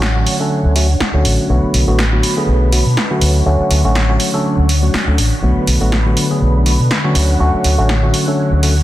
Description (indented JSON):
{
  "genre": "filtered disco house",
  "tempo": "122 BPM",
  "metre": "4/4",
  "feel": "swing 56% on 16ths",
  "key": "unclear",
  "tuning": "A4 = 440 Hz",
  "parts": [
    { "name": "bright tine electric piano", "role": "accompaniment", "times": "0.0-8.7 s", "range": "D3 to A4", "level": "-17 LUFS", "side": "equal", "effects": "phaser, low-pass filter" },
    { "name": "string machine, full ensemble", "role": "sustained chords", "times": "0.0-8.8 s", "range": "D3 to B5", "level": "-22 LUFS", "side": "left 1 dB", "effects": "phaser, ensemble chorus, low-pass filter" },
    { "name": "overdriven fingered electric bass", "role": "bass", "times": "0.0-8.8 s", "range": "A1 to B2", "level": "-14 LUFS", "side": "equal", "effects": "low-pass filter" },
    { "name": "punchy analog drum machine", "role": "drums", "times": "0.0-8.7 s", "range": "hi-hat, snare drum", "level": "-20 LUFS", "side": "right 1 dB", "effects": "none" }
  ],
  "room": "light reverb",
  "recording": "dense, heavily limited modern master",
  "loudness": "-12 LUFS",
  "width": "side -14 dB against mid",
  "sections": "0.0-8.8 A section",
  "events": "none",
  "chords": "0.0 Dmaj7; 1.5 Bm7; 3.2 Dmaj7; 5.4 Bm7; 7.2 Dmaj7",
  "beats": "0.02 0.51 1.00 | 1.50 1.99 2.48 2.97 | 3.46 3.96 4.45 4.94 | 5.43 5.92 6.41 6.91 | 7.40 7.89 8.38"
}